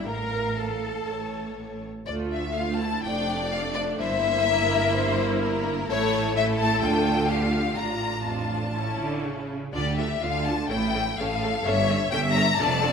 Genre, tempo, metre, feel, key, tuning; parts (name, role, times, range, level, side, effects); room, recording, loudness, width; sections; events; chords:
quick classical-period movement for string orchestra; 125 BPM; 4/4; rubato; D minor; A4 = 441 Hz
warm studio violin section; melody; 0.0-12.9 s; C#5 to Bb5; -27 LUFS; left 6 dB
rich studio violin section; second line; 0.0-12.9 s; E4 to Bb5; -31 LUFS; left 3 dB
rich studio viola section; accompaniment; 0.0-12.9 s; A3 to Bb4; -30 LUFS; right 2 dB
clear studio cello section; bass; 0.0-12.9 s; D2 to D3; -32 LUFS; right 3 dB
rich studio double bass section; bass; 0.0-12.9 s; F1 to D2; -30 LUFS; right 3 dB
moderate concert hall reverb, RT60 2.2 s; minimal, uncompressed stereo recording; -23 LUFS; side -6 dB against mid
0.0-2.1 A section; 2.1-12.9 B section
0.1 Fadd11/A; 1.1 A; 2.1 Dm; 3.0 Dm/F; 4.0 Edim/G; 5.9 A; 6.8 Dm; 7.8 Dm/A; 8.8 A; 9.7 Dm; 10.7 A; 11.7 A7/G